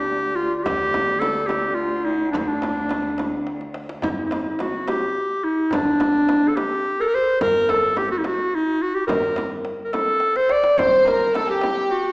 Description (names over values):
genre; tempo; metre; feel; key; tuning
Persian modal ensemble; 71 BPM (dotted quarters); 6/8; straight; D dastgah shur, G avaz esfahan from 4.0 s; A4 = 439 Hz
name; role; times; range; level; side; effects
clear clarinet; melody; 0.0-12.1 s; D4 to D5; -19 LUFS; equal; none
clear chamber cello section; drone; 0.0-4.1 s; D2; -31 LUFS; equal; none
upright bass; bass; 0.7-11.8 s; G1 to D2; -36 LUFS; equal; none
frame drum; percussion; 0.7-11.8 s; none; -28 LUFS; equal; none
tombak; percussion; 0.7-12.0 s; none; -37 LUFS; equal; none
warm studio violin section; second line; 10.8-12.1 s; G4 to C5; -23 LUFS; equal; none
room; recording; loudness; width
wet recital hall reverb, RT60 1.4 s; recorded in a church or concert hall, small speaker sound; -18 LUFS; side -26 dB against mid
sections
0.0-4.0 A section; 4.0-12.1 B section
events
drum fill 3.5-4.0, 10.2-10.8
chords
none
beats
| 0.65 1.50 | 2.34 3.18 | 4.03 4.87 | 5.71 6.56 | 7.40 8.25 | 9.09 9.94 | 10.78 11.63